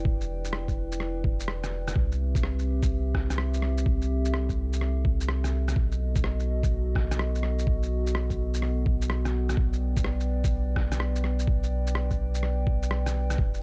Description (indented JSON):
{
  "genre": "future garage",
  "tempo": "126 BPM",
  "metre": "4/4",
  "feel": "swing 66% on 16ths",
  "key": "unclear",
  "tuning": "A4 = 442 Hz",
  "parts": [
    { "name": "dark analog pad", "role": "sustained chords", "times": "0.0-13.6 s", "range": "B3 to G5", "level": "-37 LUFS", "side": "equal", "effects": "subtle chorus, sidechain pumping" },
    { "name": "warm sub bass", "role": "bass", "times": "0.0-13.6 s", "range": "E1 to C2", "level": "-30 LUFS", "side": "equal", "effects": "sidechain pumping" },
    { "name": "electronic kick drum", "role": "drums", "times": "0.1-13.5 s", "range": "none", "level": "-29 LUFS", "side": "equal", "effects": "studio reverb" },
    { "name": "electronic shaker and rim click", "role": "drums", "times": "0.2-13.6 s", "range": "none", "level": "-38 LUFS", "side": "equal", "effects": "studio reverb" }
  ],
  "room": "little or no reverb",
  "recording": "cassette tape",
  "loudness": "-27 LUFS",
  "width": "mono",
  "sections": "0.0-13.6 A section",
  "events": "none",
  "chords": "0.0 Em7; 2.0 Cmaj7; 5.8 B7; 9.6 G/B"
}